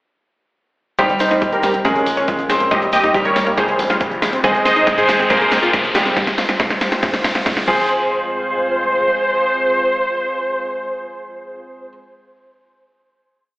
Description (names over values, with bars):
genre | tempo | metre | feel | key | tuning
uplifting trance | 139 BPM | 4/4 | straight | F minor | A4 = 441 Hz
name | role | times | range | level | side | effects
supersaw stab | melody | 1.0-11.9 s | Db4 to Eb5 | -18 LUFS | equal | sidechain pumping, low-pass filter, dub echo
clear baby grand piano | second line | 1.0-11.9 s | G3 to C5 | -21 LUFS | equal | tape echo
analog string pad | sustained chords | 1.5-11.9 s | G3 to C5 | -26 LUFS | equal | ensemble chorus, sidechain pumping
analog pluck | arpeggios | 1.0-8.1 s | Eb3 to Ab4 | -24 LUFS | left 1 dB | chorus, sidechain pumping, dub echo
electronic kick drum | drums | 1.0-7.8 s | none | -24 LUFS | equal | none
punchy analog drum machine | drums | 1.0-7.7 s | hi-hat, snare drum | -21 LUFS | equal | sidechain pumping on hats
tube shaker | percussion | 1.0-6.1 s | none | -38 LUFS | equal | none
riser | sound effects | 3.8-7.9 s | none | -25 LUFS | equal | none
tight sequencer bass | bass | 1.1-9.1 s | Eb1 to Ab2 | -31 LUFS | equal | sidechain pumping
room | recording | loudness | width
wet digital room reverb, RT60 1.1 s | played on a big sound system in a bare room, stone room reverb, telephone sound | -14 LUFS | side -19 dB against mid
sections
1.0-7.9 build; 7.9-11.3 final hit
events
build-up 1.0-7.9; drum fill 1.0-7.9; filter sweep on supersaw synth 1.0-6.2; filter sweep on synth pluck 1.0-6.2; riser 3.8-7.9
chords
1.0 Cm; 1.9 Bbm7; 2.7 Eb; 3.6 Fm; 4.4 Ab; 5.3 Fm; 6.2 Csus4; 7.0 Fm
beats
| 0.99 1.42 1.85 2.28 | 2.71 3.15 3.58 4.01 | 4.44 4.87 5.30 5.74 | 6.17 6.60 7.03 7.46 | 7.89 8.32 8.76 9.19 | 9.62 10.05 10.48 10.91